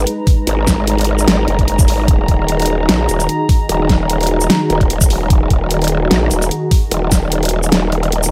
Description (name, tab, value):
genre	heavy wobble dubstep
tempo	149 BPM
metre	4/4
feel	swing 55% on 16ths, half-time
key	unclear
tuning	A4 = 438 Hz
part	lush unison pad	sustained chords	0.0-8.3 s	D#3 to B4	-22 LUFS	equal	chorus, sidechain pumping
part	growl bass	bass	0.0-8.3 s	D#1 to A#1	-18 LUFS	equal	chorus, overdrive
part	warbly tape-like pad	texture	0.1-8.3 s	A#5	-28 LUFS	equal	chorus, built-in reverb, sidechain pumping
part	dubstep drum kit	drums	0.1-8.3 s	hi-hat, shaker, snare drum	-20 LUFS	equal	studio ambience
part	electronic kick drum	drums	0.3-7.2 s	none	-15 LUFS	equal	studio ambience
room	light reverb, digital ambience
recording	none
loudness	-14 LUFS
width	mono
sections	0.0-8.3 A section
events	kick drops out 7.7-8.3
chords	0.0 G#madd9; 2.1 D#m